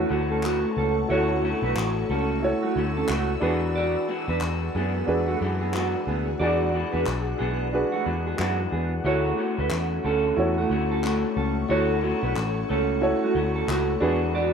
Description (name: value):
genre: indie pop, bedroom pop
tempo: 91 BPM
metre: 4/4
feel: swing 60% on 16ths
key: unclear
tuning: A4 = 440 Hz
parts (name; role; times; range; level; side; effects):
- mellow electric guitar; second line; 0.0-14.5 s; A3 to D5; -28 LUFS; right 6 dB; lush chorus, tape echo
- dark upright piano; accompaniment; 0.0-14.5 s; D4 to D5; -28 LUFS; right 2 dB; cassette tape, plate reverb
- electric guitar through a small old amp; accompaniment; 0.0-14.5 s; D3 to F#4; -29 LUFS; left 6 dB; wide subtle chorus, vibrato effect
- ethereal airy pad; sustained chords; 0.0-14.5 s; G#4 to F#6; -34 LUFS; left 2 dB; ensemble chorus, built-in reverb, phaser
- vintage muted picked electric bass; bass; 0.0-14.5 s; A1 to F#2; -28 LUFS; left 1 dB; none
- group handclap; percussion; 0.4-13.9 s; none; -34 LUFS; left 3 dB; none
room: light reverb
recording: rough home demo mix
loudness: -22 LUFS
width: side -6 dB against mid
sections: 0.0-14.5 A section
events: none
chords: 0.0 Dmaj7; 3.4 E9; 9.1 Dmaj7; 14.0 E9